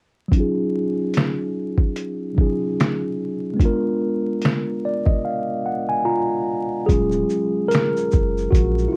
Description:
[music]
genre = lo-fi hip hop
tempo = 73 BPM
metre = 4/4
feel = swing 57% on 16ths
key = Eb minor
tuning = A4 = 440 Hz
[part]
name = mellow tine electric piano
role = accompaniment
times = 0.3-9.0 s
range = Gb3 to Bb5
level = -23 LUFS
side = equal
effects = cassette tape, low-pass filter
[part]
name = lo-fi sampler-style drum kit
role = drums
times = 0.3-8.9 s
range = finger snaps, hi-hat, kick drum, shaker, snare drum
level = -21 LUFS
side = equal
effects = overdrive
[part]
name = soft dub sub bass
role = bass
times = 6.9-8.9 s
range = Eb1 to Bb1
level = -26 LUFS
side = equal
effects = none
[sound]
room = light reverb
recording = worn, warbling old tape, cassette tape, vinyl crackle, warbly pitch drift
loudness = -21 LUFS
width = mono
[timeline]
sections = 0.3-6.9 A section; 6.9-9.0 B section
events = filter sweep on tine electric piano 0.3-6.9; tine electric piano fill 4.4-6.9; drums muted 5.2-6.9; tine electric piano solo 6.9-9.0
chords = 0.3 Ebm11; 3.6 Bb7b9; 6.9 Ebm11

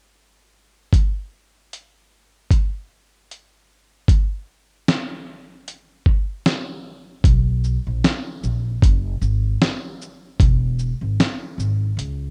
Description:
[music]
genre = lo-fi hip hop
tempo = 76 BPM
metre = 4/4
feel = swing 56% on 16ths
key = unclear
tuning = A4 = 440 Hz
[part]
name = dusty soul sampler-style drum kit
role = drums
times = 0.9-12.2 s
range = hi-hat, kick drum, shaker, snare drum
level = -20 LUFS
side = equal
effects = none
[part]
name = upright bass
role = bass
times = 7.2-12.3 s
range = E1 to C#2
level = -23 LUFS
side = equal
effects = none
[sound]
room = little or no reverb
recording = rough home demo mix, cassette tape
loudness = -21 LUFS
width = mono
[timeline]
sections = 0.9-7.2 A section; 7.2-12.3 B section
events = none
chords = none

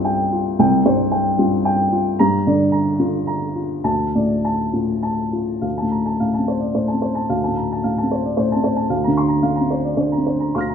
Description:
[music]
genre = neoclassical minimalist piano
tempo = 100-116 BPM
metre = 3/4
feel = rubato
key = D minor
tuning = A4 = 442 Hz
[part]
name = dark upright piano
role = solo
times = 0.0-10.7 s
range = C2 to Bb6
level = -17 LUFS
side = equal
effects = none
[sound]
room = moderate scoring stage reverb, RT60 1.5 s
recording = minimal, uncompressed stereo recording, faint mains hum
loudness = -17 LUFS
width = side -7 dB against mid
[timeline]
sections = 0.0-5.6 A section; 5.6-10.7 B section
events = none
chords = 0.0 Csus4; 2.2 Gm7; 3.9 Dm; 5.6 Dm7; 8.9 Bbadd9/D

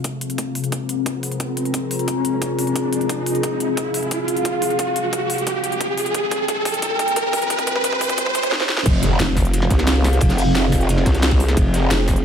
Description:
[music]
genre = dark technical drum and bass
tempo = 177 BPM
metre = 4/4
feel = straight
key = F minor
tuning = A4 = 444 Hz
[part]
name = dark analog pad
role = sustained chords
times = 0.0-12.2 s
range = C4 to Bb5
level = -23 LUFS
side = left 1 dB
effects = chorus, phaser, sidechain pumping
[part]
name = drum and bass drum kit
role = drums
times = 0.0-12.2 s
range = crash cymbal, hi-hat, snare drum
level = -24 LUFS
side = equal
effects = studio reverb
[part]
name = electronic kick drum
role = drums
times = 0.0-12.1 s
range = none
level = -22 LUFS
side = equal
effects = high-pass filter on kick, studio reverb
[part]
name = riser and impact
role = sound effects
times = 0.1-10.2 s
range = none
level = -23 LUFS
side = right 1 dB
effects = none
[part]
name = growl bass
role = bass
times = 8.9-11.9 s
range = F1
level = -18 LUFS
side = equal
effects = chorus, tube saturation, sidechain pumping
[part]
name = crunchy breakbeat drum kit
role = drums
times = 8.9-12.2 s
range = hi-hat, ride cymbal, snare drum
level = -29 LUFS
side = equal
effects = high-pass filter on cymbals, studio reverb, high-pass filter on hats, high-pass filter on snare, high-pass filter on room
[part]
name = vowel-sweep wobble bass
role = bass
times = 9.2-12.2 s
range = F1 to C2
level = -18 LUFS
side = equal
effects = chorus
[sound]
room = light reverb, small room reverb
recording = high-pass filter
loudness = -17 LUFS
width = side -8 dB against mid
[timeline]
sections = 0.0-8.9 A section; 8.9-12.2 B section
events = build-up 0.0-8.9; riser 0.1-8.5; drum fill 3.4-8.5, 8.5-8.9; drop 8.9-12.2; impact 8.9-10.2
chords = 0.0 Fm

